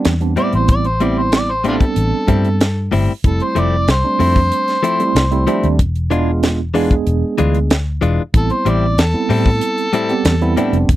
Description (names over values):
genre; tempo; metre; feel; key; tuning
straight-eighth soul blues; 94 BPM; 4/4; straight; A minor; A4 = 440 Hz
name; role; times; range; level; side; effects
barky tine electric piano; accompaniment; 0.0-10.9 s; G3 to G#4; -19 LUFS; right 5 dB; fast stereo tremolo
tight funk drum kit; drums; 0.0-11.0 s; hi-hat, kick drum, snare drum; -16 LUFS; equal; none
vintage muted fingered electric bass; bass; 0.1-11.0 s; E1 to A2; -17 LUFS; equal; none
overdriven harmonica; melody; 0.4-10.9 s; D4 to D5; -19 LUFS; equal; none
direct-recorded clean electric guitar; stabs; 0.4-10.8 s; A2 to F4; -18 LUFS; left 5 dB; none
room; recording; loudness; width
little or no reverb; dry, close 1970s-style studio recording; -13 LUFS; side -15 dB against mid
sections
0.0-11.0 A section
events
none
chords
0.0 Am7; 3.2 Fmaj7; 5.8 E7b9; 8.3 Am7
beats
0.05 | 0.69 1.33 1.97 2.60 | 3.24 3.88 4.52 5.16 | 5.79 6.43 7.07 7.71 | 8.34 8.98 9.62 10.26 | 10.89